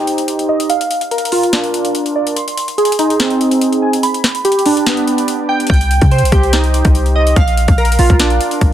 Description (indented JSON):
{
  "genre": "hip hop, trap",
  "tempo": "144 BPM",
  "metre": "4/4",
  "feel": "half-time",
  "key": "C minor",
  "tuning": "A4 = 442 Hz",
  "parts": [
    { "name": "glassy digital keys", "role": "arpeggios", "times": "0.0-8.7 s", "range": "B3 to C6", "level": "-14 LUFS", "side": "right 2 dB", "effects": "chorus, low-pass filter, digital delay" },
    { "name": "trap drum kit", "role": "drums", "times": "0.1-8.7 s", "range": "hi-hat, kick drum, snare drum", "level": "-16 LUFS", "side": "left 1 dB", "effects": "overdrive" },
    { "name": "warm 808-style bass", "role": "bass", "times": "5.7-8.7 s", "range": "Bb1 to C3", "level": "-13 LUFS", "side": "left 1 dB", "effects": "none" }
  ],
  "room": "little or no reverb",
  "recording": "dense, heavily limited modern master",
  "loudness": "-11 LUFS",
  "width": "side -11 dB against mid",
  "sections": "0.0-8.7 A section",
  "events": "break 0.0-5.7; filter sweep on synth keys 0.0-5.7; kick muted 4.0-5.7",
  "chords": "0.0 Cm; 0.7 Bb; 2.4 Ab; 4.0 G; 5.7 Cm; 7.4 Bb"
}